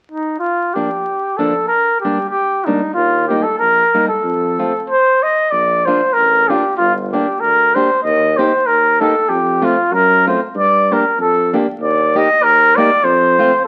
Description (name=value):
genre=alpine folk, alpine dance band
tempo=95 BPM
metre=2/4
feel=swing 54% on 8ths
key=Bb major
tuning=A4 = 440 Hz
part: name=mellow trumpet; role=melody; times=0.1-13.7 s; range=Eb4 to Eb5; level=-15 LUFS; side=equal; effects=none
part: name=fingerpicked plugged-in steel-string acoustic guitar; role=accompaniment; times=0.8-13.5 s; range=F3 to G4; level=-22 LUFS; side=equal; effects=none
part: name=clear tuba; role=bass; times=3.0-13.7 s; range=G1 to G2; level=-24 LUFS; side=equal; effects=none
room=moderate studio reverb, RT60 0.9 s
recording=very old 78 rpm record, vinyl crackle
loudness=-15 LUFS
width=mono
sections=0.4-5.5 A section; 5.5-13.7 B section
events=none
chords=0.4 Bb; 1.7 Gm; 3.0 Eb; 4.2 F; 5.5 Bb; 6.8 Gm; 8.0 Eb; 9.3 F; 10.6 Gm; 11.8 Eb; 13.0 F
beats=| 0.41 1.05 | 1.69 2.33 | 2.96 3.60 | 4.23 4.87 | 5.51 6.15 | 6.79 7.42 | 8.04 8.67 | 9.29 9.92 | 10.55 11.19 | 11.81 12.42 | 13.04 13.66